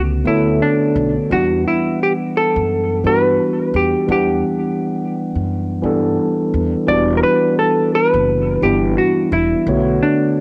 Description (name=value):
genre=lo-fi hip hop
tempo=86 BPM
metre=4/4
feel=swing 62% on 16ths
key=E dorian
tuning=A4 = 441 Hz
part: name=tine electric piano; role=accompaniment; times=0.0-10.4 s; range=D3 to F#5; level=-20 LUFS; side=equal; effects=low-pass filter
part: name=upright bass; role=bass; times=0.0-10.0 s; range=E1 to G2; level=-25 LUFS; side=equal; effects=none
part: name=hollow-body jazz guitar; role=melody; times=0.3-10.4 s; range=D4 to D5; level=-19 LUFS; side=equal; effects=low-pass filter, analog delay
room=light reverb, small room ambience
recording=home recording on cassette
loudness=-17 LUFS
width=mono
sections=0.0-6.9 A section; 6.9-10.4 A section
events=none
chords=0.0 Bm7; 1.3 Em7; 9.7 Bm7